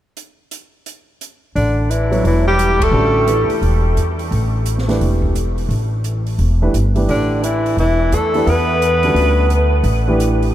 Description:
modal jazz; 174 BPM; 4/4; swing 64% on 8ths; A mixolydian; A4 = 439 Hz
open jazz drum kit; drums; 0.2-10.5 s; hi-hat, kick drum, ride cymbal, snare drum; -29 LUFS; right 1 dB
breathy alto saxophone; melody; 1.6-3.5, 7.1-9.7 s; D4 to B4; -19 LUFS; equal; analog delay
mellow tenor saxophone; second line; 1.6-3.5, 7.1-9.7 s; D3 to B3; -23 LUFS; left 1 dB
upright bass; bass; 1.6-10.5 s; E1 to E2; -16 LUFS; equal
warm baby grand piano; accompaniment; 2.1-10.5 s; D3 to C#5; -22 LUFS; right 2 dB
moderate huge ambient reverb, RT60 9.2 s; dreamy mix soaked in reverb; -14 LUFS; side -12 dB against mid
0.2-1.5 A section; 1.5-10.5 B section
band accent 2.8
0.2 N.C.; 1.5 A9sus4

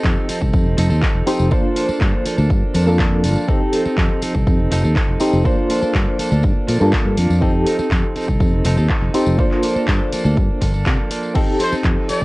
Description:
filtered disco house; 122 BPM; 4/4; straight; F mixolydian; A4 = 440 Hz
bright reed electric piano; accompaniment; 0.0-12.2 s; Bb3 to C5; -21 LUFS; equal; fast tremolo, phaser, sidechain pumping, cassette tape
direct-recorded clean electric guitar; riff; 0.0-12.2 s; F3 to A4; -24 LUFS; right 2 dB; vintage 12-bit sampler grit, sidechain pumping, cassette tape
fingered electric bass; bass; 0.0-12.2 s; F1 to C3; -18 LUFS; equal; sidechain pumping
electronic kick drum; drums; 0.0-12.2 s; -18 LUFS; equal; cassette tape
punchy analog drum machine; drums; 0.0-12.2 s; crash cymbal, handclaps, hi-hat; -26 LUFS; equal; cassette tape, sidechain pumping on hats, sidechain pumping on cymbals
tambourine; percussion; 0.0-12.2 s; -36 LUFS; left 3 dB; sidechain pumping on perc
clear trumpet section; melody; 11.6-12.2 s; C5 to D5; -22 LUFS; left 1 dB; sidechain pumping, cassette tape
little or no reverb; home recording on cassette, nothing above 10.9 kHz; -15 LUFS; side -21 dB against mid
0.0-12.2 A section
0.0 F7; 1.5 Gm9; 3.5 F7; 5.5 Gm9; 7.4 F7; 9.4 Gm9; 11.4 F7

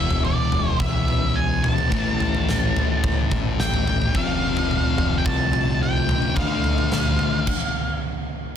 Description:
quiet-loud alternative rock; 108 BPM; 4/4; straight; A4 = 441 Hz
octave-fuzz lead guitar; melody; 0.0-8.0 s; D5 to A5; -26 LUFS; right 2 dB; distortion
electric guitar at the edge of break-up; arpeggios; 0.0-7.5 s; E2 to F4; -34 LUFS; right 4 dB; phaser
thick fuzz guitar; riff; 0.0-7.5 s; E2 to D4; -25 LUFS; left 6 dB; distortion
growling picked electric bass; bass; 0.0-7.2 s; E1 to D2; -27 LUFS; right 1 dB; overdrive
huge arena drum kit; drums; 0.1-7.6 s; crash cymbal, kick drum, snare drum, toms; -23 LUFS; right 1 dB; soft clipping on kick
light reverb; dense, heavily limited modern master; -19 LUFS; side -9 dB against mid
0.0-8.6 A section
stop 7.5-8.6
0.0 E; 1.9 A; 4.1 F; 6.4 Dm

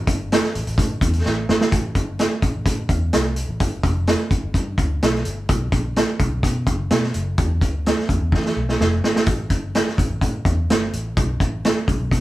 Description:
uptempo 1960s-style soul; 127 BPM; 4/4; straight; A minor; A4 = 440 Hz
vintage muted fingered electric bass; bass; 0.0-12.2 s; F1 to E3; -24 LUFS; equal
vintage drum kit; drums; 0.1-12.2 s; hi-hat, kick drum, snare drum; -19 LUFS; equal
moderate studio reverb, RT60 0.5 s; band playing live in one room; -18 LUFS; side -16 dB against mid
0.0-1.7 A section; 1.7-12.2 B section
drum fill 1.3-1.7, 8.3-9.3

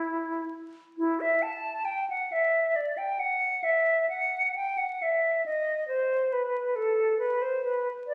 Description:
classical, baroque-style fantasia for unaccompanied flute; 68 BPM; 4/4; rubato; E minor; A4 = 440 Hz
bright concert flute; solo; 0.0-8.1 s; E4 to A5; -28 LUFS; equal
moderate recital hall reverb, RT60 1.5 s; recorded on a phone in the room, club reverb, vinyl crackle; -28 LUFS; mono
1.0-8.1 A section

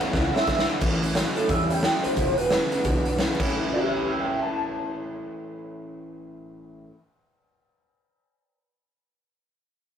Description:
rockabilly; 177 BPM; 4/4; swing 62% on 8ths; A mixolydian; A4 = 440 Hz
electric guitar through a small old amp; melody; 0.0-7.7 s; G4 to A5; -26 LUFS; right 2 dB; phaser
picked steel-string acoustic guitar; accompaniment; 0.0-7.0 s; E2 to E4; -34 LUFS; left 2 dB
electric guitar through a small old amp; riff; 0.0-6.9 s; E2 to E4; -31 LUFS; right 1 dB
upright bass; bass; 0.0-6.9 s; E1 to E2; -30 LUFS; equal
raw garage drum kit; drums; 0.0-3.5 s; crash cymbal, hi-hat, kick drum, ride cymbal, snare drum; -26 LUFS; left 1 dB
light reverb; rough rehearsal-room recording, warm saturation; -22 LUFS; side -8 dB against mid
0.8-3.5 A section; 3.5-6.2 B section
drum fill 0.1-0.8
0.0 E; 0.8 A; 2.2 E; 3.4 A

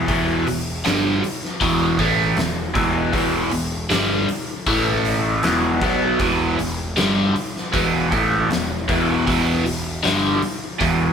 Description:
blues rock power trio and southern rock; 78 BPM; 4/4; straight; E minor; A4 = 440 Hz
overdriven electric guitar; riff; 0.0-11.1 s; E2 to B3; -19 LUFS; equal; phaser
fuzz picked electric bass; bass; 0.0-11.1 s; E1 to B1; -27 LUFS; equal; overdrive
oversized low-tuned drum kit; drums; 0.1-11.0 s; hi-hat, kick drum, snare drum; -25 LUFS; left 1 dB
moderate large studio reverb, RT60 1.1 s; band playing live in one room; -17 LUFS; side -7 dB against mid
0.0-11.1 A section
0.0 Em; 4.7 A5; 5.4 Em

